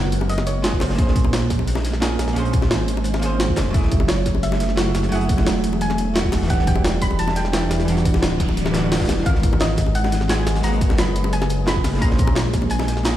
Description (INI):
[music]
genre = liquid drum and bass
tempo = 174 BPM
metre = 4/4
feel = straight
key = unclear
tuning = A4 = 443 Hz
[part]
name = soft round pluck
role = melody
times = 0.0-1.5, 4.1-13.2 s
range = B#4 to B5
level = -28 LUFS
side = right 1 dB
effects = analog chorus, ping-pong delay
[part]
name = archtop guitar, miked and amplified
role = accompaniment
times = 0.0-13.2 s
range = E3 to B#4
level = -25 LUFS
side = right 1 dB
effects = digital delay
[part]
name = ethereal airy pad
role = sustained chords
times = 0.0-13.2 s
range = E3 to E5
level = -28 LUFS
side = equal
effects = ensemble chorus, built-in reverb, sidechain pumping
[part]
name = dark detuned saw bass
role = bass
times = 0.0-13.2 s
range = D1 to A#1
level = -22 LUFS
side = equal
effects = none
[part]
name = crunchy breakbeat drum kit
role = drums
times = 0.1-13.1 s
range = hi-hat, snare drum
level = -30 LUFS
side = equal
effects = high-pass filter on hats, studio ambience, high-pass filter on snare, high-pass filter on room
[part]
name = jungle sampler-style drum kit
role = drums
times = 0.1-13.1 s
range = hi-hat, snare drum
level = -26 LUFS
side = equal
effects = studio ambience
[part]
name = bongos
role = percussion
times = 0.2-12.9 s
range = none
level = -32 LUFS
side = left 5 dB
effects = none
[part]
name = electronic kick drum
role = drums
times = 0.7-12.6 s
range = none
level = -21 LUFS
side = equal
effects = studio ambience
[part]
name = noise sweep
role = sound effects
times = 8.3-9.3 s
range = none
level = -38 LUFS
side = right 3 dB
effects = none
[sound]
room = light reverb, small room reverb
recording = played on a big sound system in a bare room, stone room reverb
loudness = -17 LUFS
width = side -12 dB against mid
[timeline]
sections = 0.0-13.2 A section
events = noise sweep 8.3-9.3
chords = 0.0 G#m9; 1.0 A#m9; 3.7 F#m9; 6.5 Em9; 9.3 G#m9; 12.0 A#m9